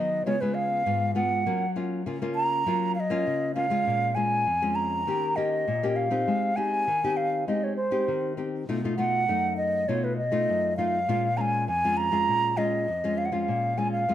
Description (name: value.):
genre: samba.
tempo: 100 BPM.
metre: 4/4.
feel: straight.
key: Bb minor.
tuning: A4 = 440 Hz.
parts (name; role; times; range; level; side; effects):
hollow wooden flute; melody; 0.0-14.1 s; B4 to Bb5; -26 LUFS; right 1 dB; plate reverb.
nylon-string guitar; accompaniment; 0.0-14.1 s; F2 to G4; -28 LUFS; left 2 dB; none.
room: moderate studio reverb, RT60 0.7 s.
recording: none.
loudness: -24 LUFS.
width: side -11 dB against mid.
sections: 0.0-14.1 A section.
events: none.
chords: 0.3 Db7; 1.5 Gbmaj7; 3.9 Bbm7; 5.1 Eb7; 6.3 Abmaj7; 8.7 B7#11; 11.1 Bbm7.